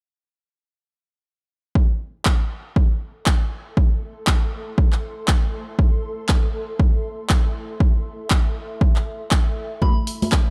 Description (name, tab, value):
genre	deep house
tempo	119 BPM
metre	4/4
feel	swing 60% on 16ths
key	A minor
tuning	A4 = 440 Hz
part	electronic kick drum	drums	1.8-10.4 s	none	-20 LUFS	equal	overdrive, studio reverb
part	granular cloud pad	texture	3.7-10.5 s	E4 to C6	-37 LUFS	equal	built-in reverb, sidechain pumping
part	punchy analog drum machine	drums	2.3-10.4 s	handclaps, hi-hat	-28 LUFS	equal	overdrive, studio reverb
part	soft synth bell	melody	9.8-10.0 s	B5	-34 LUFS	equal	chorus, phaser, tape echo
part	congas	percussion	9.8-10.3 s	none	-28 LUFS	equal	none
room	digital ambience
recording	dark, warm production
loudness	-21 LUFS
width	mono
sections	1.8-10.5 A section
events	fade-in on ambient pad 1.8-10.5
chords	1.8 Am; 9.8 E5